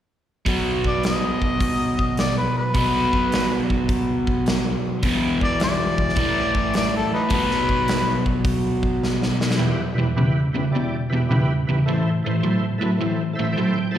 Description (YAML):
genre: blues rock power trio and southern rock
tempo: 105 BPM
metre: 4/4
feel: swing 67% on 8ths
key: unclear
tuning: A4 = 440 Hz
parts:
  - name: crunchy overdriven guitar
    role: riff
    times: 0.5-14.0 s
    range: E2 to B3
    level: -21 LUFS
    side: equal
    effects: slapback echo
  - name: big rock drum kit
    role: drums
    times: 0.5-9.6 s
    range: hi-hat, kick drum, snare drum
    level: -24 LUFS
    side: equal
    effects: none
  - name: warm harmonica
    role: melody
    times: 0.9-8.2 s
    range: D#4 to D#5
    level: -24 LUFS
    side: left 2 dB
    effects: overdrive, slapback echo, analog delay
  - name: overdriven tonewheel organ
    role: sustained chords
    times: 9.6-14.0 s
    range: E4 to A5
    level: -28 LUFS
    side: right 2 dB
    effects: chorus vibrato, slow rotary speaker
room: moderate club ambience, RT60 0.5 s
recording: live gig heard through the venue's PA, recital hall reverb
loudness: -19 LUFS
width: side -10 dB against mid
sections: 0.5-9.6 A section; 9.6-14.0 B section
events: drum fill 9.0-9.6; tonewheel organ fill 13.0-14.0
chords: 0.5 B; 5.0 E5; 6.2 A5; 7.3 B5; 9.6 Em; 11.9 Am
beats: | 0.46 1.03 1.60 2.17 | 2.74 3.31 3.89 4.46 | 5.03 5.60 6.17 6.74 | 7.31 7.88 8.44 9.01 | 9.58 10.15 10.72 11.29 | 11.85 12.42 12.99 13.56